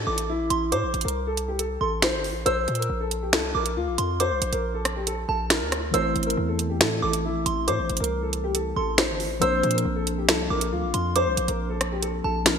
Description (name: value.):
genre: hip hop, drill.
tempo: 138 BPM.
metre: 4/4.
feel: half-time.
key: A phrygian.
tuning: A4 = 440 Hz.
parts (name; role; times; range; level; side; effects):
dark grand piano; melody; 0.0-12.6 s; E4 to C5; -27 LUFS; left 2 dB; lush chorus, low-pass filter, ping-pong delay.
delicate synth tine bell; second line; 0.0-12.4 s; A5 to E6; -30 LUFS; right 4 dB; chorus, ping-pong delay.
distorted 808-style bass; bass; 0.0-12.6 s; G1 to Bb2; -29 LUFS; equal; distortion.
drill drum kit; drums; 0.2-12.6 s; finger snaps, hi-hat, rim click, snare drum; -24 LUFS; right 1 dB; gated reverb.
mellow tine electric piano; accompaniment; 5.9-12.6 s; E3 to E4; -30 LUFS; left 2 dB; medium stereo tremolo, low-pass filter.
room: moderate lush hall reverb, RT60 1.9 s, digital ambience.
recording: bright 1980s-style digital production.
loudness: -22 LUFS.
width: side -7 dB against mid.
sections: 0.0-12.6 A section.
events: none.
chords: 0.0 Am; 2.5 Bbadd9; 5.9 Am; 9.4 Bbadd9.